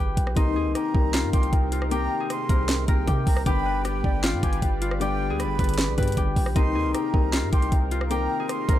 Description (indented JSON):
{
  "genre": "hip hop, trap",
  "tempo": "155 BPM",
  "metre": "4/4",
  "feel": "half-time",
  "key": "C minor",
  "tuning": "A4 = 440 Hz",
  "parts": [
    { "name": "concert harp", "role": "melody", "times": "0.0-8.8 s", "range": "Eb4 to B4", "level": "-28 LUFS", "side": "left 3 dB", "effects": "digital delay" },
    { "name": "hard-hitting 808-style bass", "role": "bass", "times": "0.0-8.8 s", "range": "G1 to C3", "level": "-26 LUFS", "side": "equal", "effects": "none" },
    { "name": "trap drum kit", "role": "drums", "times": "0.2-8.8 s", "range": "hi-hat, kick drum, rim click, snare drum", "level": "-24 LUFS", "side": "equal", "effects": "none" },
    { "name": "breathy concert flute", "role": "second line", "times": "0.4-8.8 s", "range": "G5 to C6", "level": "-33 LUFS", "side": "right 5 dB", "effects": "digital delay" },
    { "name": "dark concert grand piano", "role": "accompaniment", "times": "0.4-8.8 s", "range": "D3 to D5", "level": "-31 LUFS", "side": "left 6 dB", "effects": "none" },
    { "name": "warm analog pad", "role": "sustained chords", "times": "0.4-8.8 s", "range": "C3 to D5", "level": "-36 LUFS", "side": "right 1 dB", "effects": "chorus" }
  ],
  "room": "small room ambience",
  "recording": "dark, warm production",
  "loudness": "-21 LUFS",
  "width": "side -12 dB against mid",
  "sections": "0.4-8.8 A section",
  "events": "none",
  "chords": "0.4 Cm7; 3.5 G; 6.6 Cm7"
}